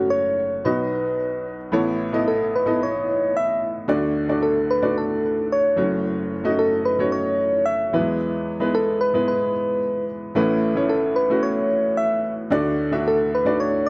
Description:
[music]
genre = pop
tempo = 111 BPM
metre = 4/4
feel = straight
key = unclear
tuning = A4 = 444 Hz
[part]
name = soft struck synth lead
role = melody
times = 0.0-13.9 s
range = F#4 to E5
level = -24 LUFS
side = equal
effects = chorus, delay
[part]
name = clear upright piano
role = accompaniment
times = 0.0-13.9 s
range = F#1 to E5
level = -25 LUFS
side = equal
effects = none
[sound]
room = moderate large studio reverb, RT60 1.3 s, small room ambience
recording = none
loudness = -22 LUFS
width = mono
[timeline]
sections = 0.0-1.7 A section; 1.7-13.9 B section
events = none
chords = 0.0 F#m; 0.6 B; 1.7 Aadd9; 3.9 D; 5.8 F#m; 7.9 E; 10.4 Aadd9; 12.5 D

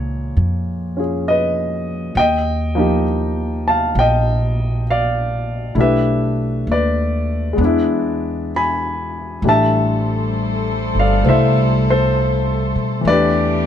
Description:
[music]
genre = jazz ballad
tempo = 66 BPM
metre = 4/4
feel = swing 67% on 8ths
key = unclear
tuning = A4 = 440 Hz
[part]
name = warm baby grand piano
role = accompaniment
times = 0.0-13.7 s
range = Bb2 to B5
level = -18 LUFS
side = left 1 dB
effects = none
[part]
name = upright bass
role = bass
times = 0.0-13.7 s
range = G1 to B2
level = -20 LUFS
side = right 1 dB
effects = none
[part]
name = warm chamber cello section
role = sustained chords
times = 9.4-13.7 s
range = E3 to C5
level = -22 LUFS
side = left 4 dB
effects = none
[sound]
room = light reverb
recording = dark, warm production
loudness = -15 LUFS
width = side -9 dB against mid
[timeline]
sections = 0.0-13.7 A section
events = none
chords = 0.0 Db9; 2.2 Ebmaj9; 5.8 G69/B; 7.6 E7; 9.4 Am7; 13.1 Em7

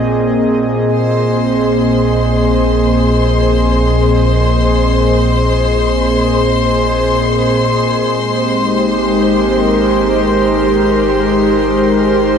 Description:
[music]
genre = ambient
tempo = free time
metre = none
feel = none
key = unclear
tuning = A4 = 441 Hz
[part]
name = airy breathy pad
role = sustained chords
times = 0.0-12.4 s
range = Bb2 to Eb5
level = -12 LUFS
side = equal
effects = chorus
[part]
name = round analog bass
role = bass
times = 0.0-12.4 s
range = Ab1 to Bb1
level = -19 LUFS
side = equal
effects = none
[part]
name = clear chamber violin section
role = texture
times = 0.9-12.4 s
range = C5 to C6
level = -18 LUFS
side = left 2 dB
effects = none
[sound]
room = moderate plate reverb, RT60 2.8 s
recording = nothing above 10.8 kHz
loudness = -11 LUFS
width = side -7 dB against mid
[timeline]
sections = 0.9-12.4 A section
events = fade-out on analog synth bass 0.9-12.4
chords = 0.0 Bb9sus4; 8.1 Abmaj7

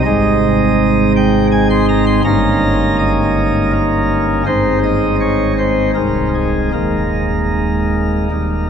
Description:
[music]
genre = classical, chorale-style piece for pipe organ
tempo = 81 BPM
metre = 3/4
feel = uneven beats, rubato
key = Ab major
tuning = A4 = 437 Hz
[part]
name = pipe organ, sparkling flutes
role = solo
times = 0.0-8.7 s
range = C1 to C6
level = -12 LUFS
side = equal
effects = none
[sound]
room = wet cathedral reverb, RT60 5.8 s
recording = heard from further back in the room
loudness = -12 LUFS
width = side -7 dB against mid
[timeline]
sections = 0.0-8.7 A section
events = none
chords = 0.1 Ab; 2.2 Eb7/G; 4.5 Ab; 6.0 Ab/C; 6.7 Ebsus4

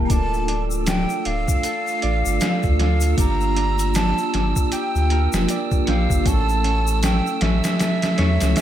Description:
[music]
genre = trip hop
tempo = 78 BPM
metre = 4/4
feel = swing 60% on 16ths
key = D harmonic minor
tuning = A4 = 440 Hz
[part]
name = vibraphone with hard mallets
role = accompaniment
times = 0.0-8.6 s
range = A3 to A5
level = -26 LUFS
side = right 1 dB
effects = harmonic tremolo, tape echo
[part]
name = concert harp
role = arpeggios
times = 0.0-8.6 s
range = E3 to G5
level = -33 LUFS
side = right 1 dB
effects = tape echo
[part]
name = warm sub bass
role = bass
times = 0.0-8.6 s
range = D1 to E2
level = -21 LUFS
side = equal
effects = none
[part]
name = breathy mellow silver concert flute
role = melody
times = 0.1-8.6 s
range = E5 to Bb5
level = -26 LUFS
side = right 1 dB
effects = vintage 12-bit sampler grit, tape echo
[part]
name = trip hop sampler-style drum kit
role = drums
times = 0.1-8.6 s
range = hi-hat, kick drum, snare drum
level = -21 LUFS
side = equal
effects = overdrive, gated reverb
[part]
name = egg shaker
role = percussion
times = 0.1-8.6 s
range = none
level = -34 LUFS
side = left 7 dB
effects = none
[part]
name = wind-like tuned noise texture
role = texture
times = 0.4-8.6 s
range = E6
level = -33 LUFS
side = right 8 dB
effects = built-in reverb
[sound]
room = light reverb, studio reverb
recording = bright 1980s-style digital production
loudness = -18 LUFS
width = side -11 dB against mid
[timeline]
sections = 0.0-8.6 A section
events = none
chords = 0.1 Dm; 3.2 Gm7; 6.3 A

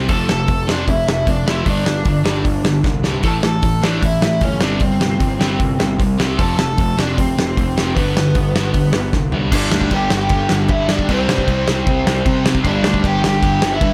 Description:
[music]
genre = punk rock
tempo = 153 BPM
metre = 4/4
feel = straight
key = G mixolydian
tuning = A4 = 440 Hz
[part]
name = distorted electric guitar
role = riff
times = 0.0-13.9 s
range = F2 to C4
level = -26 LUFS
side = equal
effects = distortion
[part]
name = sludgy distorted guitar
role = riff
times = 0.0-13.9 s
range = F2 to C4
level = -25 LUFS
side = equal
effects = none
[part]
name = fuzz picked electric bass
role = bass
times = 0.0-13.9 s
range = F1 to C3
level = -24 LUFS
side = equal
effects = overdrive
[part]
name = lead guitar through a small cranked amp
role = melody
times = 0.1-13.9 s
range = B3 to A5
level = -24 LUFS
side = equal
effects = overdrive, tape echo
[part]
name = loose indie drum kit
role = drums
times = 0.1-13.9 s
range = crash cymbal, hi-hat, kick drum, snare drum, toms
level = -21 LUFS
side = equal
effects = none
[part]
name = overdriven electric guitar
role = riff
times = 9.5-13.9 s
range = G2 to C4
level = -28 LUFS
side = equal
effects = none
[sound]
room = light reverb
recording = none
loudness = -17 LUFS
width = mono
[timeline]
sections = 0.0-9.5 A section; 9.5-13.9 B section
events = drum fill 2.9-3.2, 9.1-9.5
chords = 0.1 F; 1.7 G5; 3.2 A; 4.6 C5/G; 6.4 F; 8.0 G; 9.5 G5; 11.1 C5; 12.7 G5

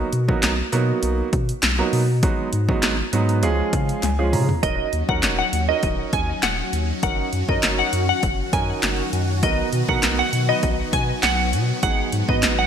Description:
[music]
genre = dance-pop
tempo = 100 BPM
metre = 4/4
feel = straight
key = Eb minor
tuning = A4 = 440 Hz
[part]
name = warm concert grand piano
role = accompaniment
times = 0.0-12.7 s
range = F3 to Bb5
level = -25 LUFS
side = right 5 dB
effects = sidechain pumping
[part]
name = warm sub bass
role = bass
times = 0.0-12.7 s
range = Eb1 to Db3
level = -23 LUFS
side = left 1 dB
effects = sidechain pumping
[part]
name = punchy analog drum machine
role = drums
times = 0.1-12.6 s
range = handclaps, hi-hat, kick drum, snare drum, toms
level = -23 LUFS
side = equal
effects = overdrive, gated reverb
[part]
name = group handclap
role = percussion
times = 0.4-12.6 s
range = none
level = -36 LUFS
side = left 6 dB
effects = none
[part]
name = glassy wavetable pluck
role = melody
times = 4.6-12.7 s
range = Eb5 to Ab5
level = -23 LUFS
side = equal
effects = chorus, sidechain pumping, ping-pong delay
[part]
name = supersaw chords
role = sustained chords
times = 4.6-12.7 s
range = Eb3 to Gb4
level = -28 LUFS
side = equal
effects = lush chorus, sidechain pumping
[sound]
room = moderate lush hall reverb, RT60 1.7 s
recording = bright 1980s-style digital production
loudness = -18 LUFS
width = side -8 dB against mid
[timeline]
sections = 0.0-4.6 A section; 4.6-12.7 B section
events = grand piano fill 3.4-4.6; drum fill 4.0-4.6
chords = 0.0 Bmaj7; 2.2 Abm7; 3.4 Db; 4.6 Ebm7; 7.0 Gb6; 9.4 Bmaj7; 11.8 Abm7

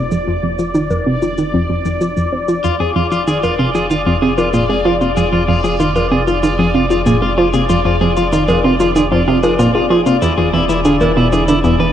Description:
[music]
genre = ambient, sequencer-driven space music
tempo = 95 BPM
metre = 4/4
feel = straight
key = F dorian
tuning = A4 = 440 Hz
[part]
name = analog pluck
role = riff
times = 0.0-11.9 s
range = E2 to C4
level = -14 LUFS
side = right 1 dB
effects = chorus, analog delay
[part]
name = warm sub bass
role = bass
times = 0.0-11.9 s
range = E1 to F1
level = -24 LUFS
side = equal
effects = none
[part]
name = bubbling stepped-filter texture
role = texture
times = 0.0-11.9 s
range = D5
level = -21 LUFS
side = left 1 dB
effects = chorus, built-in reverb, shimmer reverb
[part]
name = shaker and bongos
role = percussion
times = 0.1-11.8 s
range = none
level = -24 LUFS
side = right 1 dB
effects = overdrive, analog delay
[part]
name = electric guitar at the edge of break-up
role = arpeggios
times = 2.6-11.9 s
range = E4 to B4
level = -18 LUFS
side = moving between left 6 dB and right 1 dB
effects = auto-pan, analog delay, shimmer reverb
[sound]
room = wet huge ambient reverb, RT60 8.7 s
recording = worn, warbling old tape, cassette tape, warbly pitch drift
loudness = -12 LUFS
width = side -10 dB against mid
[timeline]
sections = 0.0-11.9 A section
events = fade-in on sub bass 0.0-11.9; fade-in on drum 0.0-11.9; filter sweep on synth arpeggio sound 0.0-11.9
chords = 0.0 Fm7; 10.2 E7

